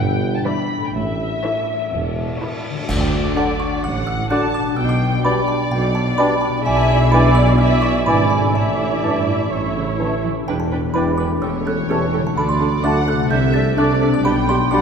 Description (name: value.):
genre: cinematic, playful, whimsical film cue.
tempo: 127 BPM.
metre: 4/4.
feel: straight.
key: D major.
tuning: A4 = 440 Hz.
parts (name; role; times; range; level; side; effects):
muted studio violin section; melody; 0.0-14.8 s; D5 to B5; -30 LUFS; left 3 dB; none.
concert harp; arpeggios; 0.0-14.8 s; G2 to B4; -24 LUFS; left 5 dB; none.
mellow tuba; bass; 0.0-14.8 s; E1 to D2; -25 LUFS; right 2 dB; none.
muted studio cello section; bass; 0.0-14.8 s; D2 to E3; -25 LUFS; right 2 dB; none.
muted studio double bass section; bass; 0.0-14.8 s; E1 to D2; -25 LUFS; right 2 dB; none.
muted studio violin section; second line; 0.5-14.8 s; A4 to A5; -26 LUFS; equal; none.
muted chamber viola section; accompaniment; 0.5-14.8 s; E3 to D5; -24 LUFS; right 3 dB; none.
music box; melody; 2.9-14.8 s; F#5 to A6; -25 LUFS; right 2 dB; none.
clash cymbals and concert bass drum; percussion; 2.9-3.8 s; none; -27 LUFS; equal; none.
mellow clarinet; second line; 3.3-14.8 s; D4 to G4; -29 LUFS; left 2 dB; none.
dark French horn section; sustained chords; 3.3-14.8 s; E3 to D4; -28 LUFS; left 2 dB; none.
mellow hollow flute section; second line; 3.4-14.8 s; F#5 to B5; -28 LUFS; equal; none.
warm oboe; second line; 3.4-14.8 s; C#5 to D5; -30 LUFS; right 1 dB; none.
mellow bassoon; accompaniment; 3.4-14.8 s; B2 to A3; -28 LUFS; right 2 dB; none.
room: wet concert hall reverb, RT60 1.9 s.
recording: none.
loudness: -16 LUFS.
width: side -6 dB against mid.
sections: 0.0-2.9 A section; 2.9-14.8 B section.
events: band accent 2.9-3.4.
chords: 0.0 Em7/G; 0.9 A; 2.9 D; 4.8 G/B; 6.7 E7/B; 8.6 Asus4; 9.5 A; 10.5 Em7; 11.4 A7/E; 12.4 D; 13.3 D7/C; 14.2 G/B.